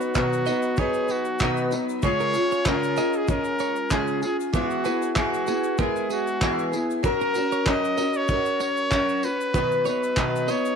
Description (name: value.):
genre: acoustic pop.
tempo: 96 BPM.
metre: 4/4.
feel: swing 55% on 16ths.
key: F# major.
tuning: A4 = 444 Hz.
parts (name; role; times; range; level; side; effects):
clear trumpet; melody; 0.0-10.8 s; F#4 to D#5; -27 LUFS; equal; slapback echo.
picked acoustic archtop guitar; accompaniment; 0.0-10.8 s; B2 to B4; -24 LUFS; left 1 dB; double-tracked left and right.
tube shaker; percussion; 0.0-10.8 s; none; -46 LUFS; left 19 dB; none.
cloth-damped thuddy drum kit; drums; 0.2-10.6 s; handclaps, kick drum, tambourine; -27 LUFS; equal; none.
clean electric guitar; arpeggios; 0.5-10.8 s; G#4 to D#5; -33 LUFS; right 12 dB; none.
room: moderate spring reverb, RT60 2.2 s.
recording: 1960s-style stereo with parts hard left and right.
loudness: -21 LUFS.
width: side -6 dB against mid.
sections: 0.0-10.8 A section.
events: none.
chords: 0.0 B; 2.0 C#; 4.5 E; 7.0 F#; 9.5 B.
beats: 0.15 0.78 1.41 | 2.03 2.66 3.28 3.91 | 4.53 5.16 5.79 6.41 | 7.04 7.66 8.29 8.92 | 9.54 10.17.